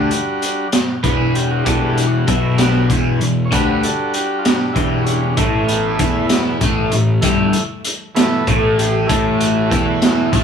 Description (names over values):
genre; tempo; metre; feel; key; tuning
psychedelic rock; 65 BPM (dotted quarters); 6/8; straight; E dorian; A4 = 438 Hz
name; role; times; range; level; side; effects
combo organ; sustained chords; 0.0-10.4 s; E3 to C#5; -22 LUFS; right 4 dB; none
overdriven electric guitar; riff; 0.0-10.4 s; E2 to E4; -19 LUFS; left 2 dB; phaser
fuzz picked electric bass; bass; 0.0-10.4 s; E1 to E2; -19 LUFS; left 1 dB; overdrive
raw garage drum kit; drums; 0.1-10.4 s; hi-hat, kick drum, snare drum; -18 LUFS; equal; none
room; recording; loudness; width
light reverb; none; -14 LUFS; side -7 dB against mid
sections
0.0-10.4 A section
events
transistor combo organ solo 0.0-10.4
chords
0.0 Em7; 5.4 A5